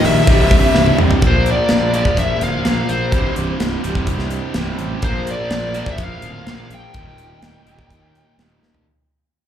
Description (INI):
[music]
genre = hard rock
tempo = 126 BPM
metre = 4/4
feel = straight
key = unclear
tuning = A4 = 439 Hz
[part]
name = high-gain lead guitar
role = melody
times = 0.0-8.4 s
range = C5 to G5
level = -21 LUFS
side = left 3 dB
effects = distortion, slapback echo
[part]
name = cranked stack guitar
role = riff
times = 0.0-8.9 s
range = C2 to Bb3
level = -23 LUFS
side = right 9 dB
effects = overdrive, slapback echo
[part]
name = overdriven semi-hollow guitar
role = riff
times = 0.0-1.2 s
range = C2 to Eb3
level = -21 LUFS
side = left 1 dB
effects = none
[part]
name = scooped high-gain guitar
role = riff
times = 0.0-8.8 s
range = C2 to Bb3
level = -26 LUFS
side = left 9 dB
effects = distortion
[part]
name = fuzz fingered electric bass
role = bass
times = 0.0-8.8 s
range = C1 to Eb2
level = -21 LUFS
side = equal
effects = overdrive
[part]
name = tight metal drum kit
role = drums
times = 0.0-8.8 s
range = hi-hat, kick drum, snare drum, toms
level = -19 LUFS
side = equal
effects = none
[sound]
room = studio ambience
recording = live gig heard through the venue's PA, club reverb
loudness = -14 LUFS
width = side -10 dB against mid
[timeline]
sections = 0.0-1.2 A section; 1.2-8.8 B section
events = drum fill 0.7-1.2, 8.6; fade-out 1.2-8.8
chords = 0.3 C; 1.2 Bb; 3.1 C5; 5.0 Bb; 6.9 Eb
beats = 0.28 0.75 | 1.22 1.69 2.17 2.64 | 3.12 3.59 4.07 4.55 | 5.02 5.50 5.98 6.46 | 6.93 7.41 7.89 8.37